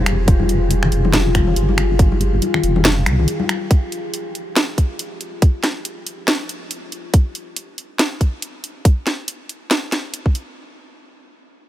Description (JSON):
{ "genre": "deep dubstep", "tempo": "140 BPM", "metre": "4/4", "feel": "swing 57% on 16ths, half-time", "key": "F minor", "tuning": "A4 = 440 Hz", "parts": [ { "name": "deep dark ambient pad", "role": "sustained chords", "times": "0.0-7.1 s", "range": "F4 to Ab4", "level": "-25 LUFS", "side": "left 3 dB", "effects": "chorus, built-in reverb" }, { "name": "deep soft wobble bass", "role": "bass", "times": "0.0-3.3 s", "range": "F1 to C2", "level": "-17 LUFS", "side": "equal", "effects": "chorus" }, { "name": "garage drum kit", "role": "drums", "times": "0.1-10.4 s", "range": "finger snaps, hi-hat, snare drum", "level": "-21 LUFS", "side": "equal", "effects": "none" }, { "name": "electronic kick drum", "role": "drums", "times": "0.3-10.3 s", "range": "none", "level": "-13 LUFS", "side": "equal", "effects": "none" }, { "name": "congas", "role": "percussion", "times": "0.4-3.5 s", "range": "none", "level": "-23 LUFS", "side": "left 3 dB", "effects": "dub echo" } ], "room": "light reverb, digital ambience", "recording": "none", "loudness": "-16 LUFS", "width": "side -13 dB against mid", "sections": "0.0-10.6 A section", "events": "none", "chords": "0.0 Fmadd9" }